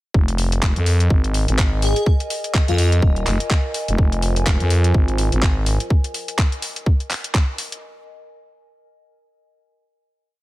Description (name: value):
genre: bass house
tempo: 125 BPM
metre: 4/4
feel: swing 58% on 16ths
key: F minor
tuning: A4 = 440 Hz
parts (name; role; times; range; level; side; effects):
- growling FM bass; bass; 0.1-5.8 s; Eb1 to F2; -18 LUFS; equal; sidechain pumping
- electronic kick drum; drums; 0.1-7.5 s; none; -17 LUFS; equal; none
- warbly tape-like pad; texture; 0.7-7.8 s; Bb4 to Ab5; -32 LUFS; equal; chorus, built-in reverb, sidechain pumping
- garage drum kit; drums; 0.3-7.8 s; handclaps, hi-hat; -25 LUFS; equal; none
- airy dreamy lead; melody; 1.8-2.9 s; F4 to Ab4; -26 LUFS; left 2 dB; chorus, dub echo
- dark analog pad; sustained chords; 4.0-5.9 s; F4 to Ab5; -30 LUFS; right 3 dB; chorus, sidechain pumping
room: little or no reverb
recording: none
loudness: -16 LUFS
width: side -17 dB against mid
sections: 0.1-7.8 drop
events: drop 0.1-7.8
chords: 0.1 Fm